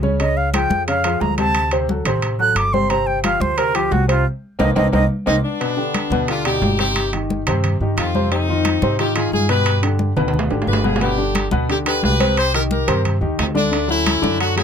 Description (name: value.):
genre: latin, salsa.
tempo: 177 BPM.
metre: 4/4.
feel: straight.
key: C minor.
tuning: A4 = 440 Hz.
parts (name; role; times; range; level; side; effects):
clear concert grand piano; accompaniment; 0.0-14.6 s; B2 to D5; -22 LUFS; left 1 dB; none.
upright bass; bass; 0.0-14.6 s; G1 to Ab2; -22 LUFS; right 1 dB; none.
congas; percussion; 0.0-14.6 s; none; -24 LUFS; left 2 dB; none.
bright reedy concert flute; melody; 0.2-5.4 s; F4 to F#6; -19 LUFS; right 2 dB; none.
timbales; percussion; 0.2-14.6 s; none; -25 LUFS; right 4 dB; none.
brilliant horn section; melody; 5.3-14.6 s; A3 to C5; -20 LUFS; left 2 dB; none.
room: light reverb.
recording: close, detailed microphones.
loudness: -16 LUFS.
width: side -7 dB against mid.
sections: 0.0-5.6 A section; 5.6-14.6 B section.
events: flute solo 0.0-5.6; band accent 4.3-5.6; drum fill 10.2-11.0.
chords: 0.2 Db; 1.6 D7; 2.9 G7sus4; 4.3 Cm7; 5.6 G; 7.0 Cm/G; 8.3 Fm7; 9.7 G; 12.4 Cm7; 13.7 D.